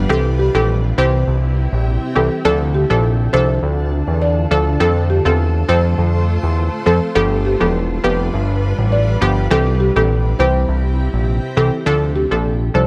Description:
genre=dancehall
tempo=102 BPM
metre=4/4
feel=straight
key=D minor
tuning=A4 = 436 Hz
part: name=granular cloud pad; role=sustained chords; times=0.0-11.8 s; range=C3 to C5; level=-27 LUFS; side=equal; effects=built-in reverb
part: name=fat analog bass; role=bass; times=0.0-12.9 s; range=E1 to F2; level=-19 LUFS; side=equal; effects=none
part: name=buzzing marimba with soft mallets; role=melody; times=0.1-12.9 s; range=G4 to D5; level=-22 LUFS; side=equal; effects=tape echo
part: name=analog pluck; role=accompaniment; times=0.1-12.9 s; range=E3 to A4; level=-22 LUFS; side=equal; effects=chorus
room=light reverb, digital ambience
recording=none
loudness=-16 LUFS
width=mono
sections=0.0-11.9 A section; 11.9-12.9 B section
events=none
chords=0.1 C; 2.5 Dm; 4.8 F; 7.2 G7; 9.5 C; 11.9 Dm

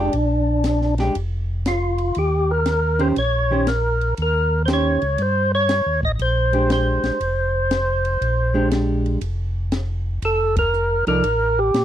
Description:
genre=soul jazz organ trio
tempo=119 BPM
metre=4/4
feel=swing 67% on 8ths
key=Bb mixolydian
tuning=A4 = 440 Hz
part: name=percussive tonewheel organ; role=melody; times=0.0-11.8 s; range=D4 to Eb5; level=-20 LUFS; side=equal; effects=slow rotary speaker, overdrive, slapback echo
part: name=hollow-body jazz guitar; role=accompaniment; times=0.0-11.2 s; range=Eb3 to D5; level=-22 LUFS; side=right 2 dB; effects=none
part: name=mellow tonewheel organ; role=bass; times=0.0-11.8 s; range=F1 to Bb2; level=-22 LUFS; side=equal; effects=slow rotary speaker
part: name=compact cocktail drum kit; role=drums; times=0.1-11.8 s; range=hi-hat, kick drum, ride cymbal, snare drum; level=-27 LUFS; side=left 2 dB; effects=none
room=little or no reverb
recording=dry, close 1970s-style studio recording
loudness=-18 LUFS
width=side -11 dB against mid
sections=0.0-11.8 A section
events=band accent 10.5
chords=0.0 Bb6; 2.2 Eb6; 6.2 Bb13; 10.2 Fadd9

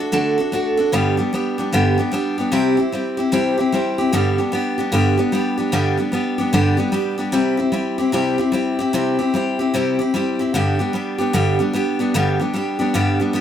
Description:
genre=rock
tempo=150 BPM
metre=4/4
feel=swing 64% on 8ths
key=G major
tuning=A4 = 440 Hz
part: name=picked steel-string acoustic guitar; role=solo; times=0.0-13.4 s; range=G2 to A4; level=-17 LUFS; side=equal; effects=none
room=light reverb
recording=band playing live in one room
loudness=-17 LUFS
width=side -9 dB against mid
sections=0.9-13.4 A section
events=none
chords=0.0 D; 0.9 G; 2.5 C; 4.1 G; 7.3 C; 10.5 G

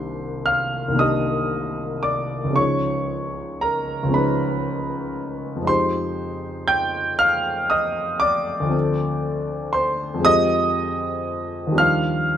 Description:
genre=classical, impressionist solo piano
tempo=39 BPM (dotted quarters)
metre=6/8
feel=rubato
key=unclear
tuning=A4 = 439 Hz
part: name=clear grand piano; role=solo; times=0.0-12.4 s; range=C2 to G6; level=-19 LUFS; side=equal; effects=none
room=moderate stone room reverb, RT60 1.5 s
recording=none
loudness=-19 LUFS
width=side -9 dB against mid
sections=0.0-12.4 A section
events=none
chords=0.0 Cm9; 2.6 Db9; 5.7 Fm9; 8.7 Dm7; 10.3 Fm9; 11.8 Ebmaj9

